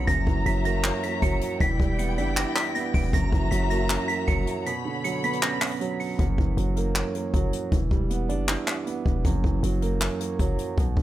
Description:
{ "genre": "hip hop, trap", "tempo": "157 BPM", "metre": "4/4", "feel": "half-time", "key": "unclear", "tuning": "A4 = 438 Hz", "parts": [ { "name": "soft synth bell", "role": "melody", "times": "0.0-6.2 s", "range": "A#6 to D7", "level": "-31 LUFS", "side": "right 2 dB", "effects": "chorus, phaser, digital delay" }, { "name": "dark grand piano", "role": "accompaniment", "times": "0.0-11.0 s", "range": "F#2 to E4", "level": "-28 LUFS", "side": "right 4 dB", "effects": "none" }, { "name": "warm symphonic string section", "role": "sustained chords", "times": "0.0-6.2 s", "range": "D3 to B5", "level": "-32 LUFS", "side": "left 4 dB", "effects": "none" }, { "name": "hard-hitting 808-style bass", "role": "bass", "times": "0.0-11.0 s", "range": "E1 to B1", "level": "-27 LUFS", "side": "left 1 dB", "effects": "none" }, { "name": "jazz brush drum kit", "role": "drums", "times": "0.1-11.0 s", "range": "handclaps, hi-hat, kick drum", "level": "-26 LUFS", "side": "equal", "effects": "none" } ], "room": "studio reverb", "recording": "none", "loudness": "-23 LUFS", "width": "side -14 dB against mid", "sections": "0.0-6.2 A section; 6.2-11.0 B section", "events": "break 4.7-6.2", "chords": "0.1 F#7; 1.6 Em7; 3.1 F#7; 4.7 Bmadd9; 6.2 F#7; 7.7 Em7; 9.2 F#7", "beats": "| 0.08 0.46 0.84 1.22 | 1.60 1.99 2.37 2.75 | 3.13 3.52 3.90 4.28 | 4.66 5.04 5.43 5.81 | 6.19 6.57 6.96 7.34 | 7.72 8.10 8.48 8.87 | 9.25 9.63 10.01 10.39 | 10.78" }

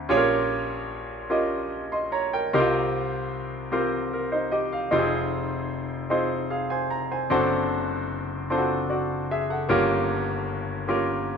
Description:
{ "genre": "gospel", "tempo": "50 BPM (dotted quarters)", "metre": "6/8", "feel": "straight", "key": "unclear", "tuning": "A4 = 440 Hz", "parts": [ { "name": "bright concert grand piano", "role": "solo", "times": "0.0-11.4 s", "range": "F1 to C6", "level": "-23 LUFS", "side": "equal", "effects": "none" } ], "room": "moderate stone room reverb, RT60 1.1 s", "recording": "band playing live in one room", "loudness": "-23 LUFS", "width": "side -6 dB against mid", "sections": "0.0-11.4 A section", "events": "none", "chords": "0.1 Gm7b5/Bb; 2.5 C7sus4; 4.9 Fm7; 7.3 D7/F#; 9.7 Gm7b5", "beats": "| 0.10 1.30 | 2.50 3.71 | 4.90 6.10 | 7.30 8.49 | 9.69 10.89" }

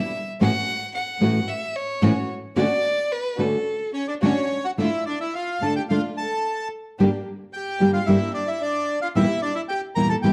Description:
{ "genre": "tango", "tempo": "110 BPM", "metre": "4/4", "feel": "rubato", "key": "D major, D minor from 4.8 s", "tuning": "A4 = 440 Hz", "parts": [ { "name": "bright violin", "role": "second line", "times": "0.0-10.3 s", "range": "C#4 to F#5", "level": "-30 LUFS", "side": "equal", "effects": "none" }, { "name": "rich chamber string section", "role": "stabs", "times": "0.0-10.3 s", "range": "G3 to G4", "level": "-33 LUFS", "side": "equal", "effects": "none" }, { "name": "nylon-string guitar", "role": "accompaniment", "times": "0.4-10.3 s", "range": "E2 to G4", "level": "-23 LUFS", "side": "equal", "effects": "none" }, { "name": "bandoneon", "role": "melody", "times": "3.9-10.3 s", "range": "C#5 to Bb5", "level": "-29 LUFS", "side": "equal", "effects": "none" } ], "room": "moderate large studio reverb, RT60 1.1 s", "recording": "dark, warm production", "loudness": "-23 LUFS", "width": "mono", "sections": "0.0-4.8 A section; 4.8-10.3 B section", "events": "violin solo 0.0-4.8", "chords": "0.4 A6; 2.6 Dmaj7; 4.8 Dm; 7.0 Gm; 9.2 Edim", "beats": "| 0.41 0.95 1.49 2.03 | 2.57 3.11 3.66 4.22 | 4.79 5.34 5.89 6.44 | 6.99 7.53 8.08 8.62 | 9.16 9.70 10.24" }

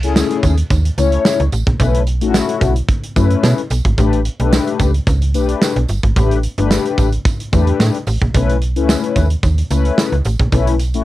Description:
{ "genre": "early-eighties boogie funk", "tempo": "110 BPM", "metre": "4/4", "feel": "straight", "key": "unclear", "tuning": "A4 = 440 Hz", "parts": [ { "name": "mellow synth brass", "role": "accompaniment", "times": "0.0-11.0 s", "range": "A3 to C#5", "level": "-18 LUFS", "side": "left 6 dB", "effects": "chorus, cassette tape" }, { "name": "slap-like FM bass", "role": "bass", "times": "0.0-11.0 s", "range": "G1 to B2", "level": "-15 LUFS", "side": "right 1 dB", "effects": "none" }, { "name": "modern studio drum kit", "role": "drums", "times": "0.0-11.0 s", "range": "hi-hat, kick drum, snare drum", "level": "-18 LUFS", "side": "right 1 dB", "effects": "none" }, { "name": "tambourine", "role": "percussion", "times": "0.2-10.9 s", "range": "none", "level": "-32 LUFS", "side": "right 11 dB", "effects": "none" } ], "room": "light reverb", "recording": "home recording on cassette", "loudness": "-13 LUFS", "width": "side -16 dB against mid", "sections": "0.0-11.0 A section", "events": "none", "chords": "0.0 B9sus4; 4.0 A9sus4; 8.3 B9sus4", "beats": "0.16 0.71 1.25 | 1.80 2.34 2.89 3.43 | 3.98 4.53 5.07 5.62 | 6.16 6.71 7.25 7.80 | 8.34 8.89 9.43 9.98 | 10.53" }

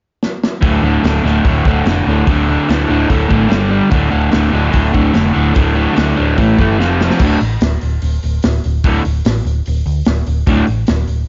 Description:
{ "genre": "garage rock duo or trio", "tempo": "146 BPM", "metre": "4/4", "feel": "straight", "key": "D minor", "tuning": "A4 = 440 Hz", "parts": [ { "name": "crunchy breakbeat drum kit", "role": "drums", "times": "0.2-11.2 s", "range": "crash cymbal, hi-hat, kick drum, snare drum", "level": "-19 LUFS", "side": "equal", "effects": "none" }, { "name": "crunchy overdriven guitar", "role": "riff", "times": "0.6-10.6 s", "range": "D2 to A3", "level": "-16 LUFS", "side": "equal", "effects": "none" }, { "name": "hollow-body short-scale picked electric bass", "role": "bass", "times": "0.6-11.2 s", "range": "D1 to D2", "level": "-19 LUFS", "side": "equal", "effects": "overdrive" } ], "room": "studio reverb", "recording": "nothing above 7.5 kHz", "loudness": "-14 LUFS", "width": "mono", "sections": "0.6-7.2 A section; 7.2-11.3 B section", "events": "drum fill 0.2-0.6, 6.8-7.2", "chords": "0.0 N.C.; 0.6 D5; 3.5 G5; 3.9 D5; 6.4 A5; 6.8 F5; 7.2 D5", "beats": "0.21 | 0.62 1.04 1.45 1.86 | 2.27 2.69 3.10 3.51 | 3.92 4.33 4.74 5.15 | 5.56 5.97 6.38 6.79 | 7.21 7.62 8.02 8.43 | 8.84 9.25 9.66 10.07 | 10.48 10.89" }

